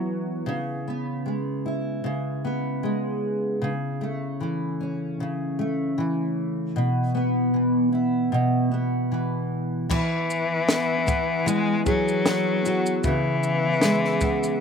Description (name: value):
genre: acoustic pop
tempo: 76 BPM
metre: 4/4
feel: swing 55% on 16ths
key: E major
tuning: A4 = 440 Hz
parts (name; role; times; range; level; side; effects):
- fingerpicked steel-string acoustic guitar; accompaniment; 0.0-14.6 s; B2 to G#4; -24 LUFS; equal; double-tracked left and right
- warm cello; second line; 9.9-14.6 s; E3 to G#3; -23 LUFS; left 4 dB; slapback echo
- compact cocktail drum kit; drums; 9.9-14.6 s; crash cymbal, kick drum, shaker, snare drum; -26 LUFS; equal; none
room: little or no reverb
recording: recorded outdoors, with no room sound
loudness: -22 LUFS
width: side -6 dB against mid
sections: 0.0-9.9 A section; 9.9-14.6 B section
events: none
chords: 0.5 C#m7; 3.6 A/C#; 6.8 Bsus4; 9.9 Eadd9; 13.0 C#m7